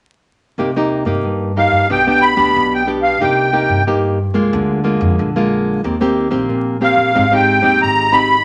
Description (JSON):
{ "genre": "samba and choro", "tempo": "91 BPM", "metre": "4/4", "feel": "straight", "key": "C minor", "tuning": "A4 = 441 Hz", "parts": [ { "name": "nylon-string guitar", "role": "accompaniment", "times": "0.6-8.4 s", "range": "G2 to G4", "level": "-18 LUFS", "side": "equal", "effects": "none" }, { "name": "upright bass", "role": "bass", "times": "0.6-8.4 s", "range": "Ab1 to G2", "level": "-24 LUFS", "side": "equal", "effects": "none" }, { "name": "musette accordion", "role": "melody", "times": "1.6-8.4 s", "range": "F5 to B5", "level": "-15 LUFS", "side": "equal", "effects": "none" } ], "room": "wet studio reverb, RT60 0.9 s", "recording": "vinyl crackle, nothing above 10.9 kHz", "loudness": "-15 LUFS", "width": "mono", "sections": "0.6-8.4 A section", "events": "none", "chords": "0.6 Cm7; 1.9 G/B; 3.2 Cm7; 4.5 Bb7/D; 5.8 Eb6; 7.2 Abmaj7" }